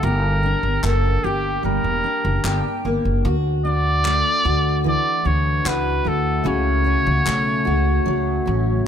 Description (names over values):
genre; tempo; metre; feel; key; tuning
acoustic pop; 75 BPM; 4/4; straight; D major; A4 = 440 Hz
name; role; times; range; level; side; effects
clear trumpet; melody; 0.0-8.8 s; G4 to D5; -22 LUFS; right 1 dB; none
fingerpicked steel-string acoustic guitar; accompaniment; 0.0-8.9 s; C#3 to G4; -23 LUFS; left 1 dB; double-tracked left and right
upright bass; bass; 0.0-8.8 s; E1 to D2; -21 LUFS; equal; none
group handclap; percussion; 0.8-7.5 s; none; -29 LUFS; left 2 dB; none
room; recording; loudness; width
light reverb, small room ambience; none; -17 LUFS; side -8 dB against mid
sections
0.0-8.9 A section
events
none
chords
0.0 Gm; 3.2 Dadd9; 6.5 F#m